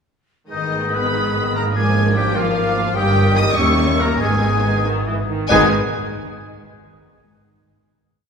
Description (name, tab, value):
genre	classical, dramatic, fast romantic movement for symphony orchestra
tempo	92-100 BPM (dotted quarters)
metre	6/8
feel	rubato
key	G# minor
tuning	A4 = 441 Hz
part	warm symphonic violin section	melody	0.5-5.7 s	D#5 to D#6	-24 LUFS	left 2 dB	none
part	large flute ensemble	second line	0.5-5.7 s	D6 to E6	-25 LUFS	left 3 dB	none
part	warm clarinet	second line	0.5-5.7 s	G4 to B4	-28 LUFS	left 4 dB	none
part	warm oboe	second line	0.5-5.7 s	D#4 to D#5	-24 LUFS	right 1 dB	none
part	warm symphonic violin section	second line	0.5-5.7 s	A#3 to E4	-27 LUFS	left 3 dB	none
part	clear symphonic viola section	accompaniment	0.5-5.7 s	D#3 to A#3	-24 LUFS	right 2 dB	none
part	warm French horn section	sustained chords	0.5-5.7 s	D#3 to D#4	-24 LUFS	left 3 dB	none
part	rich symphonic cello section	bass	0.5-5.7 s	D#2 to G#2	-24 LUFS	right 2 dB	none
part	warm symphonic double bass section	bass	0.5-5.7 s	G1 to D#2	-24 LUFS	right 2 dB	none
room	wet concert hall reverb, RT60 2.4 s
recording	minimal, uncompressed stereo recording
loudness	-15 LUFS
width	side -6 dB against mid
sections	0.5-5.5 A section; 5.5-6.8 final chord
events	none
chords	0.5 G#m; 1.8 A#7/G#; 3.0 D#7/G; 3.6 D#7b9; 4.2 G#m